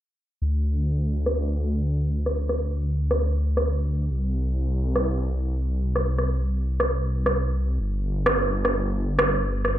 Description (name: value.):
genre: future garage.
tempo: 130 BPM.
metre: 4/4.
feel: swing 67% on 16ths.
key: unclear.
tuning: A4 = 436 Hz.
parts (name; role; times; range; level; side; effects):
swelling detuned saw bass; bass; 0.4-9.8 s; G1 to D2; -23 LUFS; equal; none.
electronic rim click; drums; 1.3-9.8 s; none; -24 LUFS; right 1 dB; none.
room: little or no reverb.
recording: low-pass filter.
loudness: -22 LUFS.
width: side -12 dB against mid.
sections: 0.4-9.8 A section.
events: filter sweep 0.4-9.8.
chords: none.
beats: | 0.42 0.88 1.34 1.80 | 2.26 2.73 3.19 3.65 | 4.11 4.57 5.03 5.50 | 5.96 6.42 6.88 7.34 | 7.80 8.26 8.73 9.19 | 9.65.